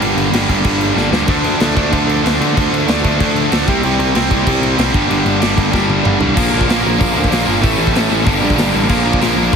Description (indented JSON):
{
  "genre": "punk rock",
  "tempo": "190 BPM",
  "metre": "4/4",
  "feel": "straight",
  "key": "unclear",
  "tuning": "A4 = 441 Hz",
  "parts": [
    { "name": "cranked stack guitar", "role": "riff", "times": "0.0-9.6 s", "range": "G2 to Bb4", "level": "-18 LUFS", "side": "left 13 dB", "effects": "overdrive" },
    { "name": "distorted electric guitar", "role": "riff", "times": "0.0-9.6 s", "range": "G2 to D4", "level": "-18 LUFS", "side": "right 15 dB", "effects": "overdrive" },
    { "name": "modern bright picked electric bass", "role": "bass", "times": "0.0-9.6 s", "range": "G1 to D3", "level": "-20 LUFS", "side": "equal", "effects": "none" },
    { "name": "big rock drum kit", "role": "drums", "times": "0.0-9.6 s", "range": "crash cymbal, hi-hat, kick drum, snare drum, toms", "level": "-18 LUFS", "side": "equal", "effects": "none" },
    { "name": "distorted electric guitar", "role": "riff", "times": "1.3-9.6 s", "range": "G2 to D4", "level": "-21 LUFS", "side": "equal", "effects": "overdrive" }
  ],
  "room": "light reverb",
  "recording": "heavily compressed radio sound, multiband compression",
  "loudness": "-12 LUFS",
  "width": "side -6 dB against mid",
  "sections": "0.0-6.4 A section; 6.4-9.6 B section",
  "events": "drum fill 1.0-1.3, 5.7-6.4",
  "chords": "0.0 Gm; 1.3 Dm; 3.7 C; 4.9 Gm; 6.4 Bb; 7.6 A; 8.3 Gm; 8.9 Bb",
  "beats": "| 0.03 0.34 0.66 0.98 | 1.30 1.61 1.93 2.25 | 2.57 2.88 3.20 3.52 | 3.83 4.15 4.47 4.79 | 5.10 5.42 5.73 6.05 | 6.37 6.68 7.00 7.31 | 7.63 7.95 8.26 8.58 | 8.89 9.21 9.52"
}